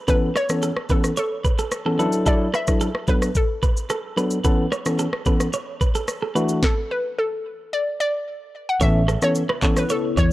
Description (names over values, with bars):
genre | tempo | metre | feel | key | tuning
afrobeats | 110 BPM | 4/4 | straight | unclear | A4 = 441 Hz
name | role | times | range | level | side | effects
hollow square pluck | melody | 0.1-10.3 s | A4 to F#5 | -25 LUFS | left 1 dB | chorus
tine electric piano | accompaniment | 0.1-9.8 s | E3 to A4 | -22 LUFS | left 1 dB | none
clean electric guitar | riff | 0.1-10.3 s | A4 to C#5 | -28 LUFS | right 4 dB | spring reverb, tape echo
afro-pop drum kit | drums | 0.1-10.3 s | handclaps, kick drum, rim click, shaker, snare drum | -22 LUFS | equal | none
deep dark ambient pad | sustained chords | 9.5-10.3 s | C#3 to E4 | -28 LUFS | left 6 dB | chorus, built-in reverb
fingered electric bass | bass | 8.8-10.3 s | A1 to E2 | -19 LUFS | equal | none
room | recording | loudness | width
little or no reverb | dry, gritty hardware recording | -19 LUFS | side -16 dB against mid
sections
0.0-8.8 A section; 8.8-10.3 B section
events
stop 6.6-8.8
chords
0.1 Aadd9; 2.0 Dadd9; 3.1 Bm7; 4.4 Aadd9; 6.4 Dadd9; 7.4 N.C.; 8.8 Aadd9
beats
| 0.08 0.63 1.17 1.72 | 2.26 2.81 3.35 3.90 | 4.44 4.99 5.54 6.08 | 6.63 7.17 7.72 8.26 | 8.81 9.35 9.90